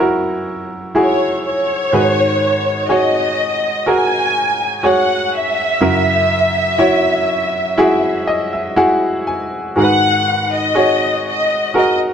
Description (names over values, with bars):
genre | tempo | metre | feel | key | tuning
pop | 62 BPM | 4/4 | straight | G# minor | A4 = 440 Hz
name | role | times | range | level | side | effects
bright baby grand piano | accompaniment | 0.0-12.1 s | F#2 to G#5 | -16 LUFS | right 1 dB | none
warm studio violin section | melody | 1.0-12.0 s | C#5 to G#5 | -16 LUFS | left 1 dB | none
room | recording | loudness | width
light reverb | dark, warm production | -13 LUFS | side -8 dB against mid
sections
0.0-9.8 A section; 9.8-12.1 B section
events
grand piano fill 7.8-9.8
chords
0.0 F#7; 1.9 G#m7; 5.8 F#7; 9.8 G#m7